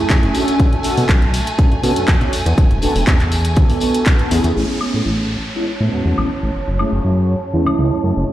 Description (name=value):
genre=filtered disco house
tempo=121 BPM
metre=4/4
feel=straight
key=A major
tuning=A4 = 440 Hz
part: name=mellow synth brass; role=accompaniment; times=0.0-8.3 s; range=F#3 to A4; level=-20 LUFS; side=right 1 dB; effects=chorus, phaser, sidechain pumping, low-pass filter
part: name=clear chamber violin section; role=sustained chords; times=0.0-8.3 s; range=A3 to A5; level=-26 LUFS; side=right 2 dB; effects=sidechain pumping, low-pass filter
part: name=fat analog bass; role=bass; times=0.0-8.2 s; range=E1 to B2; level=-18 LUFS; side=equal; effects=sidechain pumping, low-pass filter
part: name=electronic kick drum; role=drums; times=0.1-4.2 s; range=none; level=-14 LUFS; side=equal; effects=none
part: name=house drum kit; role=drums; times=0.1-7.8 s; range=handclaps, hi-hat, woodblock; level=-24 LUFS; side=left 1 dB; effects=sidechain pumping on hats, low-pass filter on hats, low-pass filter on snare, sidechain pumping on perc, low-pass filter on perc, low-pass filter on room
part: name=tambourine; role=percussion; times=0.1-4.5 s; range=none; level=-31 LUFS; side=left 1 dB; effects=sidechain pumping on perc, low-pass filter on perc
part: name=downlifter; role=sound effects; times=4.6-8.3 s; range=none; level=-30 LUFS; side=equal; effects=none
part: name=bright horn section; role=melody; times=5.9-7.4 s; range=C#3 to F#4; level=-34 LUFS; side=left 1 dB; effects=sidechain pumping, low-pass filter, tape echo
room=moderate lush hall reverb, RT60 1.9 s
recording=played on a big sound system in a bare room, stone room reverb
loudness=-14 LUFS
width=side -13 dB against mid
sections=0.0-4.6 A section; 4.6-8.3 B section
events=filter sweep 4.6-8.3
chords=0.3 Bm9; 2.3 E9sus4; 4.6 Amaj7; 6.5 F#m7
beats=0.10 | 0.59 1.09 1.59 2.08 | 2.58 3.07 3.57 4.07 | 4.56 5.06 5.55 6.05 | 6.54 7.04 7.54 8.03